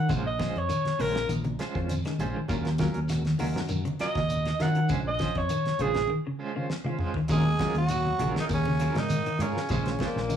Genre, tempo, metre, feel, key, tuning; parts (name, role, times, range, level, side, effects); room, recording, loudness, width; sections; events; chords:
afrobeat; 100 BPM; 4/4; straight; Eb dorian; A4 = 440 Hz
clear alto saxophone; melody; 0.0-6.1 s; Ab4 to Gb5; -29 LUFS; right 2 dB; cassette tape
clean electric guitar; arpeggios; 0.0-10.4 s; Db3 to Gb3; -33 LUFS; left 4 dB; wide subtle chorus, cassette tape, analog delay
fingered electric bass; bass; 0.0-10.4 s; Bb1 to Eb3; -29 LUFS; equal
clean electric guitar; stabs; 0.1-10.2 s; Gb3 to C5; -35 LUFS; right 7 dB; tremolo, cassette tape
damped 70s drum kit; drums; 0.1-10.4 s; hi-hat, kick drum, snare drum, toms; -34 LUFS; equal; cassette tape
claves; percussion; 0.1-10.4 s; -52 LUFS; right 1 dB
congas; percussion; 0.1-10.4 s; -36 LUFS; equal
shekere; percussion; 0.1-10.4 s; -38 LUFS; right 4 dB
overdriven reed electric piano; accompaniment; 1.0-10.4 s; Eb3 to Ab4; -38 LUFS; left 4 dB; fast tremolo, cassette tape
growling tenor saxophone; melody; 7.3-10.4 s; Bb3 to Ab4; -30 LUFS; right 1 dB; cassette tape
breathy trombone; second line; 7.3-10.4 s; Bb2 to Ab3; -35 LUFS; right 2 dB; cassette tape
small room ambience; home recording on cassette, studio ambience; -25 LUFS; side -9 dB against mid
0.0-7.3 A section; 7.3-10.4 B section
alto saxophone solo 0.0-7.3; break 6.1-7.3; drum fill 6.7-7.3
0.1 Bbm9; 2.5 Ebm9; 4.9 Bbm9; 7.3 Ebm9; 9.7 Bbm9